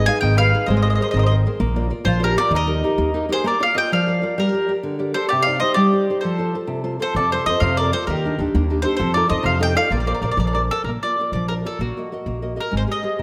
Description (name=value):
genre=italian folk, Italian serenade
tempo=130 BPM (dotted quarters)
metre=6/8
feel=straight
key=Eb major, Bb major from 3.5 s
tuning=A4 = 440 Hz
part: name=mandolin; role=melody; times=0.0-13.2 s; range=Gb4 to Ab5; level=-24 LUFS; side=equal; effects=none
part: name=mandolin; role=second line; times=0.0-10.6 s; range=F4 to F5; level=-29 LUFS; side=equal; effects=none
part: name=nylon-string guitar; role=accompaniment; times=0.0-13.2 s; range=C3 to Eb5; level=-25 LUFS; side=equal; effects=none
part: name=upright bass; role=bass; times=0.0-3.3, 7.1-13.2 s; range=Ab1 to F2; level=-24 LUFS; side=equal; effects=none
room=moderate concert hall reverb, RT60 2.0 s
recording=none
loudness=-20 LUFS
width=mono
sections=0.0-3.5 A section; 3.5-10.9 B section; 10.9-13.2 C section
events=none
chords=0.0 Abm; 0.7 Abadd9; 1.6 Bb; 2.5 Eb; 3.5 Bb; 4.4 Gm; 5.3 Cm; 6.2 F; 8.1 Ebmaj7; 9.0 F7; 9.9 Bbadd9; 10.9 Bb; 11.8 Ebm/Bb